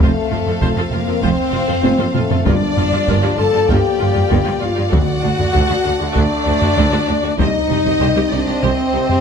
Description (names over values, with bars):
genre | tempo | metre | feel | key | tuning
cinematic, epic orchestral film score | 98 BPM | 4/4 | straight | G minor | A4 = 441 Hz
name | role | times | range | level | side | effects
warm symphonic violin section | melody | 0.0-9.2 s | D5 to F5 | -29 LUFS | left 4 dB | none
warm symphonic violin section | second line | 0.0-9.2 s | A4 to A5 | -24 LUFS | left 1 dB | none
rich symphonic viola section | accompaniment | 0.0-9.2 s | D4 to C5 | -26 LUFS | right 1 dB | none
mellow French horn section | sustained chords | 0.0-9.2 s | A3 to A4 | -19 LUFS | left 6 dB | none
warm trombone section | sustained chords | 0.0-9.2 s | C3 to C4 | -25 LUFS | right 5 dB | none
clear symphonic cello section | bass | 0.0-9.2 s | C2 to G2 | -22 LUFS | right 2 dB | none
rich symphonic double bass section | bass | 0.0-9.0 s | F1 to D2 | -22 LUFS | right 3 dB | none
taiko ensemble | drums | 0.0-9.2 s | none | -20 LUFS | equal | none
timpani | percussion | 2.5-5.8 s | G2 to D3 | -24 LUFS | right 1 dB | none
room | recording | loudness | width
moderate scoring stage reverb, RT60 1.6 s | close, detailed microphones | -14 LUFS | side -6 dB against mid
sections
0.0-9.2 A section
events
drum fill 1.8-2.5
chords
0.0 F; 2.5 Gm7; 4.9 D; 7.4 Cm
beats
| 0.01 0.62 1.23 1.84 | 2.47 3.08 3.70 4.31 | 4.93 5.54 6.16 6.78 | 7.39 8.01 8.63